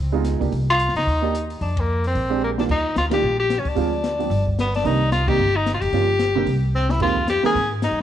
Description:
jazz, small-group swing and bop; 222 BPM; 4/4; swing 59% on 8ths; C minor; A4 = 440 Hz
upright bass; bass; 0.0-8.0 s; F#1 to Ab2; -23 LUFS; equal
warm upright piano; accompaniment; 0.1-7.5 s; Eb2 to Bb4; -25 LUFS; right 10 dB
open jazz drum kit; drums; 0.2-8.0 s; crash cymbal, hi-hat, kick drum, ride cymbal, snare drum; -29 LUFS; left 2 dB
clear tenor saxophone; melody; 0.7-8.0 s; Bb3 to Ab4; -21 LUFS; left 2 dB
light reverb, small room ambience; 1960s-style stereo, nothing above 10.7 kHz; -18 LUFS; side -11 dB against mid
0.0-2.7 A section; 2.7-8.0 B section
band accent 1.7, 3.1, 5.3; drum fill 2.4, 6.7
0.0 Db9; 0.5 Cm; 1.6 Bb/F; 2.1 Bb13; 2.7 Ebmaj7; 3.8 Dm7b5; 4.3 G; 4.8 Cm9; 5.9 Gm7b5; 6.5 C5; 7.0 Fm11

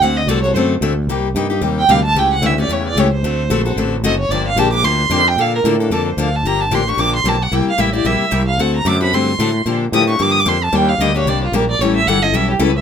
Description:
acoustic string swing (jazz manouche); 224 BPM; 4/4; swing 57% on 8ths; G minor; A4 = 441 Hz
warm violin; melody; 0.0-12.8 s; F4 to Eb6; -17 LUFS; right 3 dB
picked steel-string acoustic guitar; accompaniment; 0.0-12.7 s; C3 to A4; -18 LUFS; left 4 dB
fretless electric bass; bass; 0.0-12.8 s; F#1 to Bb2; -19 LUFS; right 1 dB
moderate small room ambience, RT60 0.5 s; minimal, uncompressed stereo recording; -13 LUFS; side -8 dB against mid
0.0-5.4 A section; 5.4-12.8 A section
violin solo 0.0-12.8
0.0 D7; 1.1 Cm7; 2.2 A7/C#; 3.2 D7; 4.3 Gm7; 5.4 Bbmaj7; 6.4 Gm7; 7.5 C7; 8.6 D7; 9.7 Bb6; 10.7 Ebmaj7; 11.8 A7

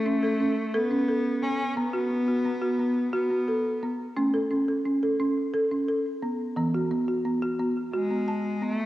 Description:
world meditative; 175 BPM (eighths); 7/8; straight; A major; A4 = 440 Hz
rich cello; melody; 0.0-3.9, 7.9-8.9 s; G#3 to C#4; -28 LUFS; left 1 dB
folk marimba with medium hard mallets; arpeggios; 0.0-8.9 s; E3 to A5; -25 LUFS; equal; cassette tape, analog delay
wet lush hall reverb, RT60 2.9 s; home recording on cassette; -24 LUFS; side -15 dB against mid
0.0-8.9 A section
0.0 A; 1.8 B5; 4.2 A; 6.6 E

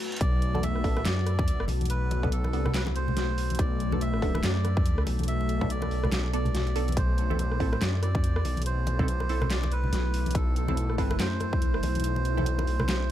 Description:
deep dubstep; 142 BPM; 4/4; swing 58% on 16ths, half-time; B phrygian; A4 = 440 Hz
deep dark ambient pad; sustained chords; 0.0-13.1 s; A3 to C5; -35 LUFS; left 2 dB; chorus, built-in reverb
dubstep drum kit; drums; 0.0-13.0 s; handclaps, hi-hat, rim click, snare drum; -34 LUFS; equal; overdrive
melodica; melody; 0.2-13.1 s; A4 to E5; -35 LUFS; right 2 dB; dub echo
dark detuned saw bass; bass; 0.2-13.1 s; B1 to F#2; -28 LUFS; equal
electronic kick drum; drums; 0.2-11.6 s; -27 LUFS; equal; overdrive
congas; percussion; 0.2-13.0 s; -35 LUFS; left 1 dB
filtered dub chord stab; stabs; 0.5-12.5 s; B3 to A4; -38 LUFS; right 3 dB; phaser, dub echo
digital ambience; dark, warm production; -24 LUFS; side -12 dB against mid
0.0-13.1 A section
break 0.0; kick drops out 12.0-13.1
0.2 Bm7; 7.0 Am/B

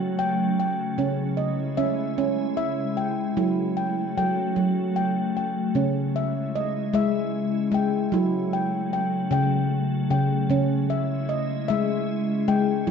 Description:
world meditative, meditative tuned percussion; 50 BPM (dotted quarters); 6/8; straight; A4 = 440 Hz
soft additive organ-like pad; sustained chords; 0.0-12.9 s; C#3 to E4; -28 LUFS; left 1 dB; ensemble chorus, built-in reverb
handpan; arpeggios; 0.0-12.9 s; C#3 to G5; -23 LUFS; equal
wet echo chamber reverb, RT60 1.7 s, studio reverb; nothing above 8.0 kHz; -22 LUFS; side -6 dB against mid
0.0-5.7 A section; 5.7-12.9 B section
0.0 F#m; 1.0 C#m; 3.4 F#m; 5.7 C#m; 8.1 F#m; 10.5 C#m

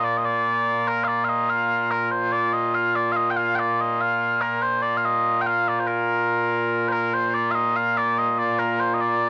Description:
scottish traditional, Scottish pipe music; 96 BPM (dotted quarters); 6/8; straight; Bb major; A4 = 440 Hz
mellow small bagpipes; solo; 0.0-9.3 s; Bb2 to G5; -22 LUFS; equal
light reverb; home recording on cassette; -23 LUFS; mono
0.0-7.1 A section; 7.1-9.3 A section

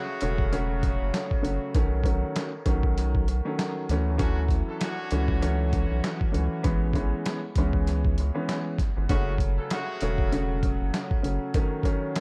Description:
hip hop, boom-bap hip-hop; 98 BPM; 4/4; swing 58% on 16ths; F# minor; A4 = 442 Hz
warm upright piano; accompaniment; 0.0-12.2 s; C#3 to C#4; -32 LUFS; equal; cassette tape, high-pass filter, low-pass filter, dub echo
clear horn section; stabs; 0.0-10.6 s; C#3 to A4; -40 LUFS; equal; high-pass filter, low-pass filter, dub echo
round analog bass; bass; 0.2-11.4 s; E1 to D2; -29 LUFS; equal
boom bap sampler-style drum kit; drums; 0.2-12.2 s; hi-hat, kick drum, snare drum; -30 LUFS; equal
small room ambience; echo-heavy mix; -26 LUFS; mono
0.0-12.2 A section
0.0 F#m; 1.7 B7; 3.9 Dmaj7; 6.6 Amaj7; 9.1 F#m; 11.5 D#m7b5

